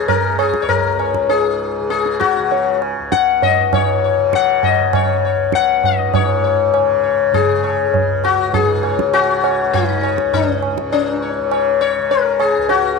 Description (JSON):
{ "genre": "indian classical, Hindustani", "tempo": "100 BPM", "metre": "4/4", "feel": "straight", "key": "Db raga durga", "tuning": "A4 = 441 Hz", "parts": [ { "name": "sitar", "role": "melody", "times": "0.0-13.0 s", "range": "Db4 to Gb5", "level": "-15 LUFS", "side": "left 10 dB", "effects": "none" }, { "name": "tanpura", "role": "drone", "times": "0.0-13.0 s", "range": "Db2 to Db3", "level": "-24 LUFS", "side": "right 3 dB", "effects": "none" }, { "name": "tabla", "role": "percussion", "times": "0.1-12.9 s", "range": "none", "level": "-20 LUFS", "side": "right 9 dB", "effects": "none" } ], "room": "light reverb", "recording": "1960s-style stereo with parts hard left and right", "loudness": "-14 LUFS", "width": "side -4 dB against mid", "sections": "0.0-6.1 A section; 6.1-13.0 B section", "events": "speeding up 0.0-13.0", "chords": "none" }